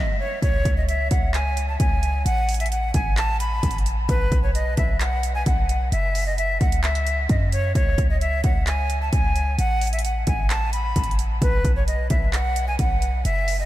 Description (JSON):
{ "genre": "hip hop, trap", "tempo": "131 BPM", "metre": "4/4", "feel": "half-time", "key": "C# minor", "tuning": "A4 = 440 Hz", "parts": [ { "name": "breathy bright jazz flute", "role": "melody", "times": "0.0-13.7 s", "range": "B4 to B5", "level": "-25 LUFS", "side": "equal", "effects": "ping-pong delay" }, { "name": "clean 808-style bass", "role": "bass", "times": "0.4-13.7 s", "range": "F#1 to F#2", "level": "-23 LUFS", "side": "equal", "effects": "none" }, { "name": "techno drum kit", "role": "drums", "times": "0.4-13.6 s", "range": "handclaps, hi-hat, kick drum", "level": "-24 LUFS", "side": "equal", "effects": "none" } ], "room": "light reverb", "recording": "none", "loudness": "-19 LUFS", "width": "side -15 dB against mid", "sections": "0.4-13.7 A section", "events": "stop 0.0-0.4", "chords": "0.4 C#5; 2.3 F#madd11/A; 4.1 B5; 5.9 F#5; 7.8 C#5; 9.6 F#madd11/A; 11.4 B5", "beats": "| 0.42 0.88 1.34 1.80 | 2.26 2.71 3.17 3.63 | 4.09 4.55 5.00 5.46 | 5.92 6.38 6.84 7.29 | 7.75 8.21 8.67 9.13 | 9.59 10.04 10.50 10.96 | 11.42 11.88 12.33 12.79 | 13.25" }